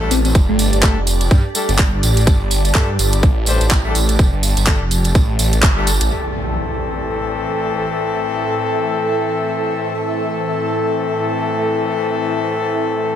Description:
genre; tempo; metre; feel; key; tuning
bass house; 125 BPM; 4/4; swing 58% on 16ths; A minor; A4 = 439 Hz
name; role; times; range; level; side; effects
clear horn section; stabs; 0.0-13.2 s; E3 to C5; -21 LUFS; left 4 dB; sidechain pumping, dub echo
phased detuned saw bass; bass; 0.0-6.1 s; F1 to G2; -17 LUFS; equal; phaser, sidechain pumping
granular cloud pad; texture; 0.0-13.2 s; G4 to A5; -25 LUFS; right 1 dB; built-in reverb, sidechain pumping
bell-like FM electric piano; melody; 0.1-1.0 s; A3 to C4; -21 LUFS; left 1 dB; chorus, phaser, dub echo
garage drum kit; drums; 0.1-6.1 s; handclaps, hi-hat; -21 LUFS; right 1 dB; overdrive, low-pass filter on snare, low-pass filter on hats
tambourine; percussion; 0.1-6.1 s; none; -25 LUFS; right 4 dB; none
electronic kick drum; drums; 0.3-5.7 s; none; -14 LUFS; equal; none
dark analog pad; sustained chords; 6.1-13.2 s; A3 to C5; -26 LUFS; right 3 dB; chorus, phaser, sidechain pumping
impact; sound effects; 6.1-8.0 s; none; -26 LUFS; equal; none
room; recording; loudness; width
light reverb, digital ambience; none; -14 LUFS; side -10 dB against mid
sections
0.0-6.1 A section; 6.1-13.2 B section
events
band accent 5.6; impact 6.1-8.0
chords
0.0 Gsus2; 6.1 Am

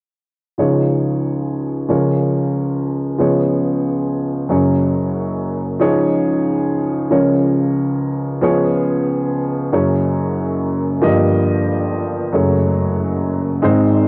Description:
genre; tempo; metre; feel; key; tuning
folk; 46 BPM (dotted quarters); 6/8; straight; Db major; A4 = 440 Hz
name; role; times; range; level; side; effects
warm upright piano; solo; 0.6-14.1 s; Gb1 to Eb5; -17 LUFS; equal; none
room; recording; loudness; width
moderate booth ambience, RT60 0.2 s; home recording on cassette; -18 LUFS; mono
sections
0.6-5.8 A section; 5.8-14.1 B section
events
none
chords
0.6 Dbadd9; 1.9 Bbm/Db; 3.2 Db7; 4.5 Gbsus2; 5.8 Dbadd9; 7.1 Bbm/Db; 8.4 Db7; 9.7 Gbsus2; 11.0 Ebadd9/G; 12.3 Gbmadd9

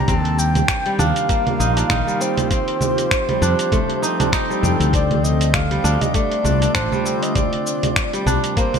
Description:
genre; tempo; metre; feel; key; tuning
organic downtempo; 99 BPM; 4/4; swing 57% on 16ths; C dorian; A4 = 441 Hz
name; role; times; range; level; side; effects
breathy flute-like synth lead; melody; 0.0-8.8 s; C5 to A5; -23 LUFS; equal; chorus, ping-pong delay
warbly tape-like pad; sustained chords; 0.0-8.8 s; C3 to A4; -26 LUFS; left 1 dB; chorus, built-in reverb, sidechain pumping
kora; arpeggios; 0.0-8.8 s; G3 to Eb4; -24 LUFS; equal; ping-pong delay
mellow fretless electric bass; bass; 0.1-8.4 s; A1 to F2; -19 LUFS; left 1 dB; none
dusty soul sampler-style drum kit; drums; 0.1-8.8 s; cabasa, congas, finger snaps, hi-hat; -22 LUFS; right 3 dB; none
electronic kick drum; drums; 0.1-8.7 s; none; -22 LUFS; left 1 dB; none
drifting glass-harmonics texture; texture; 0.6-8.8 s; C5; -32 LUFS; right 4 dB; chorus, built-in reverb
room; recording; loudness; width
moderate lush hall reverb, RT60 2.3 s; bright 1980s-style digital production; -16 LUFS; side -6 dB against mid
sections
0.0-8.8 A section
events
none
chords
0.1 Ebadd9; 2.5 Fadd9; 4.9 Dm7; 7.4 Cm

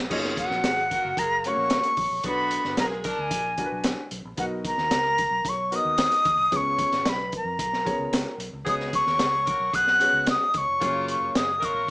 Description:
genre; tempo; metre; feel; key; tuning
uptempo 1960s-style soul; 112 BPM; 4/4; straight; F# major; A4 = 440 Hz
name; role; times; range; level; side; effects
vintage muted fingered electric bass; bass; 0.0-11.9 s; E#1 to E#2; -38 LUFS; equal; none
concert flute; melody; 0.1-11.9 s; D#5 to F#6; -23 LUFS; equal; none
vibraphone with soft mallets; second line; 0.1-11.9 s; D#4 to F#5; -36 LUFS; right 1 dB; none
warm saxophone section; second line; 0.1-3.5, 8.7-11.9 s; C#3 to A#4; -33 LUFS; equal; none
warm concert grand piano; accompaniment; 0.1-11.4 s; B2 to E#5; -32 LUFS; left 1 dB; none
crunchy breakbeat drum kit; drums; 0.1-11.7 s; crash cymbal, hi-hat, kick drum, snare drum; -29 LUFS; equal; none
room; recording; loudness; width
moderate studio reverb, RT60 0.6 s; small speaker sound; -22 LUFS; side -23 dB against mid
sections
0.1-11.9 A section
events
none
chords
0.1 F#maj7; 2.2 Bm; 4.4 Bmaj7; 6.5 C#7; 8.7 C#7sus4; 10.8 F#maj7

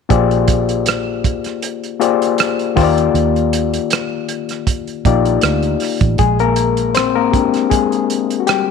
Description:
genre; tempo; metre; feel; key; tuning
lush 1970s-style soul; 79 BPM; 4/4; swing 54% on 16ths; unclear; A4 = 440 Hz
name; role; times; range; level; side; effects
overdriven reed electric piano; accompaniment; 0.1-8.7 s; Eb3 to D5; -16 LUFS; left 10 dB; spring reverb
vintage muted fingered electric bass; bass; 0.1-7.5 s; A1 to Eb2; -18 LUFS; right 3 dB; none
warm soul drum kit; drums; 0.1-8.7 s; hi-hat, kick drum, rim click; -19 LUFS; right 5 dB; none
room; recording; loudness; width
light reverb, small room ambience; 1960s-style stereo; -14 LUFS; side -6 dB against mid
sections
0.1-6.2 A section; 6.2-8.7 B section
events
reed electric piano solo 6.2-8.7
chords
0.1 Bb13; 2.8 Ebmaj7; 6.2 Bb13

